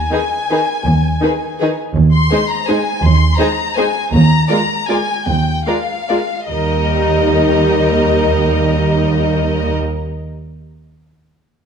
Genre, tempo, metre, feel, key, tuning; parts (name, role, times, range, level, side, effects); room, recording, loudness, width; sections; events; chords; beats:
classical, orchestral ballroom waltz; 138-180 BPM; 3/4; rubato; Eb major; A4 = 441 Hz
rich chamber violin section; melody; 0.0-9.7 s; Eb5 to C6; -20 LUFS; left 4 dB
clear chamber double bass section; bass; 0.0-9.7 s; Eb2; -18 LUFS; right 4 dB
warm chamber cello section; bass; 0.0-9.7 s; Eb2; -18 LUFS; right 1 dB
rich chamber violin section; second line; 0.1-9.7 s; Ab4 to Eb5; -20 LUFS; left 2 dB
rich symphonic viola section; accompaniment; 0.1-9.7 s; Eb3 to F4; -18 LUFS; equal
moderate scoring stage reverb, RT60 1.5 s; dark, warm production; -13 LUFS; side -7 dB against mid
0.0-6.5 A section; 6.5-9.0 B section
slowing down 3.6-6.5
0.0 Ab5/Eb; 1.9 Ab/Eb; 4.1 Bb7(no3)/Eb; 6.5 Eb
0.12 0.50 | 0.86 1.22 1.60 | 1.95 2.31 2.68 | 3.03 3.38 3.77 | 4.13 4.50 4.89 | 5.27 5.66 6.09 | 6.50 6.91 7.34 | 7.75 8.16 8.59